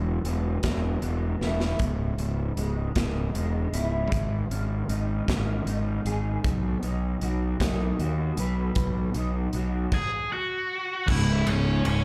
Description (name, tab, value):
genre	quiet-loud alternative rock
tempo	52 BPM (dotted quarters)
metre	6/8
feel	straight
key	C# minor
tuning	A4 = 440 Hz
part	electric guitar through a small old amp	arpeggios	0.0-9.9 s	C#2 to B4	-38 LUFS	equal	ensemble chorus, slapback echo, analog delay
part	fuzz fingered electric bass	bass	0.0-12.0 s	C#1 to D#2	-29 LUFS	equal	overdrive
part	big rock drum kit	drums	0.2-12.0 s	crash cymbal, hi-hat, kick drum, ride cymbal, snare drum	-33 LUFS	equal	none
part	octave-fuzz lead guitar	melody	9.9-12.0 s	C#4 to G#5	-30 LUFS	equal	distortion, slapback echo
part	crunchy overdriven guitar	riff	11.1-12.0 s	C#2 to C#3	-29 LUFS	equal	none
part	crunchy overdriven guitar	riff	11.1-12.0 s	C#2 to C#3	-31 LUFS	equal	none
room	studio reverb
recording	live gig heard through the venue's PA, club reverb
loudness	-27 LUFS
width	mono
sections	0.0-11.1 A section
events	drum fill 1.4-1.8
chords	0.0 Esus2; 1.8 C#m; 4.1 G#sus4; 6.4 B; 11.1 C#m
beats	0.65 | 1.80 2.96 | 4.12 5.28 | 6.44 7.60 | 8.76 9.92 | 11.08